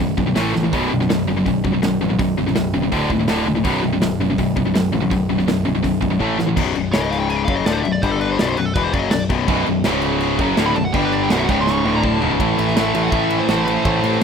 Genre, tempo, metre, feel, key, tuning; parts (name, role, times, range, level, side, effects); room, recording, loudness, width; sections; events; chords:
heavy metal; 165 BPM; 4/4; straight; B minor; A4 = 441 Hz
high-gain distorted guitar; riff; 0.0-6.6, 9.5-14.2 s; B1 to A3; -21 LUFS; right 13 dB; distortion
tight distorted guitar; riff; 0.0-14.2 s; B1 to A3; -20 LUFS; left 10 dB; distortion
picked electric bass; bass; 0.0-14.2 s; B0 to A#1; -26 LUFS; right 1 dB
modern studio drum kit; drums; 0.0-14.2 s; crash cymbal, hi-hat, kick drum, ride cymbal, snare drum, toms; -24 LUFS; right 2 dB
nasal lead guitar with a parked wah; melody; 6.9-14.2 s; A4 to C#6; -24 LUFS; right 2 dB; overdrive, digital delay
little or no reverb; rough home demo mix; -16 LUFS; side -6 dB against mid
0.0-6.6 A section; 6.6-12.4 B section; 12.4-14.2 C section
drum fill 0.5, 6.2-6.6, 11.7-12.4; lead electric guitar solo 6.6-12.4
0.4 A5; 0.7 B5; 2.9 D5; 3.7 B5; 6.2 A5; 6.6 B5; 6.9 C#5; 7.5 Bm; 8.0 G5; 8.4 B5; 9.9 C#5; 10.4 Bm; 10.9 G5; 11.3 B5; 11.5 C#5; 11.9 D5; 12.2 Amaj7/C#; 12.4 Am